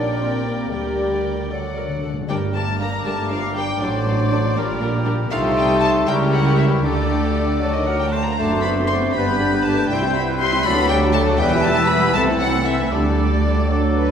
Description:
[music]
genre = quick classical-period movement for symphony orchestra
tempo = 79 BPM (dotted quarters)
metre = 6/8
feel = rubato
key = G minor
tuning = A4 = 440 Hz
[part]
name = warm chamber violin section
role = melody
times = 0.0-14.1 s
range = D5 to C6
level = -25 LUFS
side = left 2 dB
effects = none
[part]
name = clear oboe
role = second line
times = 0.0-14.1 s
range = A4 to D5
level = -29 LUFS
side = equal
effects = none
[part]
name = warm chamber violin section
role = second line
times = 0.0-14.1 s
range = C4 to G5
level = -29 LUFS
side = left 4 dB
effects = none
[part]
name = warm clarinet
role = second line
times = 0.0-14.1 s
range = B3 to Bb4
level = -28 LUFS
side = equal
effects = none
[part]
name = dark chamber viola section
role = accompaniment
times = 0.0-14.1 s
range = E3 to D5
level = -26 LUFS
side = equal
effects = none
[part]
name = warm bassoon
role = accompaniment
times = 0.0-14.1 s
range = E3 to A3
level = -26 LUFS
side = equal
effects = none
[part]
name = mellow French horn section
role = sustained chords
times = 0.0-14.1 s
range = D3 to D4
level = -26 LUFS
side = left 2 dB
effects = none
[part]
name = dark chamber cello section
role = bass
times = 0.0-14.1 s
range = C2 to D3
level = -26 LUFS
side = right 2 dB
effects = none
[part]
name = warm studio double bass section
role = bass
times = 0.0-14.1 s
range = E1 to D2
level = -24 LUFS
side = right 1 dB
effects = none
[part]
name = flute section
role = second line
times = 0.2-14.1 s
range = G4 to G6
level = -29 LUFS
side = left 2 dB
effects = none
[part]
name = timpani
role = percussion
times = 1.5-2.3 s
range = D3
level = -30 LUFS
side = left 4 dB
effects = none
[sound]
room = wet scoring stage reverb, RT60 1.5 s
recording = heard from further back in the room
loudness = -17 LUFS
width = side -8 dB against mid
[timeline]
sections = 0.0-2.3 A section; 2.3-14.1 B section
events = timpani fill 1.5-2.3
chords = 0.0 Gm/Bb; 0.7 Gm/D; 1.5 D; 2.3 Gm; 3.8 D7/A; 4.6 Gm/Bb; 5.3 Am7b5/C; 6.1 C#dim7; 6.8 Dsus4; 7.6 D; 8.4 D7/F#; 9.2 G; 9.9 C; 10.7 D; 11.4 Em; 12.2 Am/C; 12.9 Dsus4

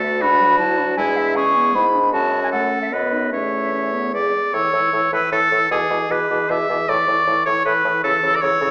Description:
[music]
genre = quick classical-period movement for wind quintet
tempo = 155 BPM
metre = 3/4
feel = rubato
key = A major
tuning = A4 = 439 Hz
[part]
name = silver concert flute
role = melody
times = 0.0-8.7 s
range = D5 to E6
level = -20 LUFS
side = equal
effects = none
[part]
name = bright oboe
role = second line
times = 0.0-8.7 s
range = E4 to E5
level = -19 LUFS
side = equal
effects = none
[part]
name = mellow French horn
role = accompaniment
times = 0.0-8.7 s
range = E3 to B3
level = -28 LUFS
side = equal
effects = none
[part]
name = warm clarinet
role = accompaniment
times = 0.0-8.7 s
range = B3 to A4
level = -28 LUFS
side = equal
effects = none
[part]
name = warm bassoon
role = bass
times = 0.0-8.7 s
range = D2 to C#3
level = -24 LUFS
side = equal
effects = none
[sound]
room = wet recital hall reverb, RT60 1.6 s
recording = recorded in a church or concert hall, small speaker sound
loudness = -15 LUFS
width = side -34 dB against mid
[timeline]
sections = 0.0-4.5 A section; 4.5-8.7 B section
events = none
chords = 0.0 Bm7/D; 1.0 E7; 2.1 F#m; 2.9 B/F#; 3.3 A/E; 4.1 E; 4.5 A; 5.7 E7/B; 6.9 A; 8.0 A/C#

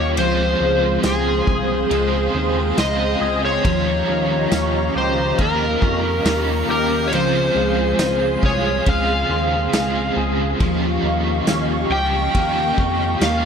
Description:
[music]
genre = dream pop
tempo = 69 BPM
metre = 4/4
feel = straight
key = unclear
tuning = A4 = 439 Hz
[part]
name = overdriven slide guitar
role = melody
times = 0.0-13.5 s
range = Ab4 to G5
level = -21 LUFS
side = left 1 dB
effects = tape echo
[part]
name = biting overdriven guitar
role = accompaniment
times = 0.0-13.5 s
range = Db3 to F4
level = -25 LUFS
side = right 3 dB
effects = tremolo, ensemble chorus
[part]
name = hollow soft pad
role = sustained chords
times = 0.0-13.5 s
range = G4 to Db6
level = -26 LUFS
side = right 1 dB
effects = ensemble chorus
[part]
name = clean electric guitar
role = arpeggios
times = 0.0-13.5 s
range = F3 to Ab4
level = -24 LUFS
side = left 2 dB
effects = ensemble chorus, tape echo
[part]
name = chorused synth bass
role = bass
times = 0.0-13.5 s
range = C2 to F2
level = -24 LUFS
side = equal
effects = none
[part]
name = vintage drum kit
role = drums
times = 0.2-13.4 s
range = kick drum, ride cymbal, snare drum, tambourine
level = -23 LUFS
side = equal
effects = none
[part]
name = drifting glass-harmonics texture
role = texture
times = 2.2-13.5 s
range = G5 to Db7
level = -34 LUFS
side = right 3 dB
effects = chorus, built-in reverb, tape echo
[sound]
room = light reverb, small room ambience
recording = none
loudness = -16 LUFS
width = side -7 dB against mid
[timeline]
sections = 0.0-13.5 A section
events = none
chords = 0.2 Dbmaj7; 3.6 Eb9; 7.1 Dbmaj7; 10.6 Eb9

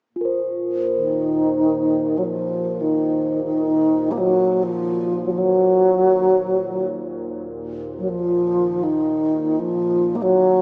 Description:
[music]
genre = world meditative, free-time meditation music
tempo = free time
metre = none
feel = none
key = Eb kumoi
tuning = A4 = 440 Hz
[part]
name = deep dark ambient pad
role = drone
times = 0.7-10.6 s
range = Eb2 to Bb2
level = -33 LUFS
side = equal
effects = chorus, built-in reverb
[part]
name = quartz singing bowl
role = texture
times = 0.2-8.9 s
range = F4 to C5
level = -29 LUFS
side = equal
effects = none
[part]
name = mellow bass flute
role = melody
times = 1.0-10.6 s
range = Eb3 to Bb3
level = -20 LUFS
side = equal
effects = none
[sound]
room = wet lush hall reverb, RT60 2.0 s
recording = small speaker sound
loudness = -20 LUFS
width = mono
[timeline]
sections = 0.1-10.6 A section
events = none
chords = none

